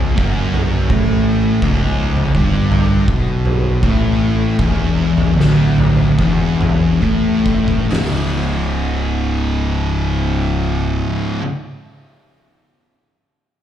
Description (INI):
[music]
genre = stoner and doom metal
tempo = 67-83 BPM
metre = 4/4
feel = straight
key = unclear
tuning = A4 = 442 Hz
[part]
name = thick fuzz guitar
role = riff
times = 0.0-11.4 s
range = C#2 to C#3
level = -16 LUFS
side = left 1 dB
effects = distortion, slapback echo
[part]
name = fuzz fingered electric bass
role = bass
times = 0.0-11.0 s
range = C#1 to B1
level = -19 LUFS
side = equal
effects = overdrive, tube saturation
[part]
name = oversized low-tuned drum kit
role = drums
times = 0.2-8.1 s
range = hi-hat, kick drum, snare drum, toms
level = -19 LUFS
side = equal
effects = none
[sound]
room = studio reverb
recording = live gig heard through the venue's PA, club reverb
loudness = -14 LUFS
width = side -10 dB against mid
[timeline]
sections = 0.0-7.9 A section; 7.9-11.5 B section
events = slowing down 1.6-7.9; drum fill 7.0-7.9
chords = 0.0 C#m; 7.9 C#5